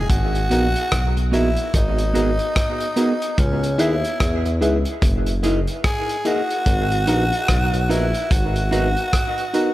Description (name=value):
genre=lovers rock reggae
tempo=73 BPM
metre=4/4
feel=swing 60% on 16ths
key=G# minor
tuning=A4 = 439 Hz
part: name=growling tenor saxophone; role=melody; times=0.0-9.7 s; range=C#4 to G#4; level=-24 LUFS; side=equal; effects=tape echo
part: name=smooth synth bass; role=bass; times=0.0-9.0 s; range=F#1 to E2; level=-21 LUFS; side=equal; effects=none
part: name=crunchy breakbeat drum kit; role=drums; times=0.1-9.7 s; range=hi-hat, kick drum, rim click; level=-22 LUFS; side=equal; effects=none
part: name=FM electric piano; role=accompaniment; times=0.5-9.7 s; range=A#3 to A#4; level=-27 LUFS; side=left 2 dB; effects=chorus, dub echo
part: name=mellow electric guitar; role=stabs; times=0.5-9.7 s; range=B3 to E5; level=-25 LUFS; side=right 3 dB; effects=spring reverb, dub echo
room=light reverb, studio reverb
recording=none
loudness=-17 LUFS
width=side -15 dB against mid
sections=0.1-9.7 A section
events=none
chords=0.1 G#m7; 3.4 C#m7; 5.0 F#13; 6.7 G#m7